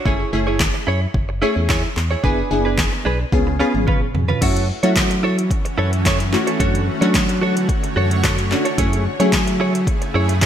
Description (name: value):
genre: dance-pop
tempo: 110 BPM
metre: 4/4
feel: straight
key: F# minor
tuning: A4 = 440 Hz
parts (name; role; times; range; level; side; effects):
- direct-recorded clean electric guitar; riff; 0.0-10.5 s; C#4 to C#5; -24 LUFS; right 3 dB; wide subtle chorus
- wavetable chord stab; accompaniment; 0.1-9.8 s; A3 to G#4; -22 LUFS; left 1 dB; lush chorus, sidechain pumping
- organ-like FM bass; bass; 0.1-10.5 s; F#1 to F#3; -20 LUFS; equal; sidechain pumping
- deep house drum kit; drums; 0.1-10.5 s; crash cymbal, handclaps, hi-hat, kick drum, snare drum, toms; -20 LUFS; equal; gated reverb
- shimmering ambient pad; sustained chords; 5.4-10.5 s; C#3 to C#5; -25 LUFS; equal; chorus, built-in reverb, sidechain pumping
room: light reverb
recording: bright 1980s-style digital production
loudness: -16 LUFS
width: side -9 dB against mid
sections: 0.0-4.4 A section; 4.4-10.5 B section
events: drum fill 3.3-4.4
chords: 0.1 Amaj7/F#; 2.2 E7/F#; 3.3 C#7; 4.4 F#m7; 6.6 Dmaj7/F#; 8.8 Amaj7/F#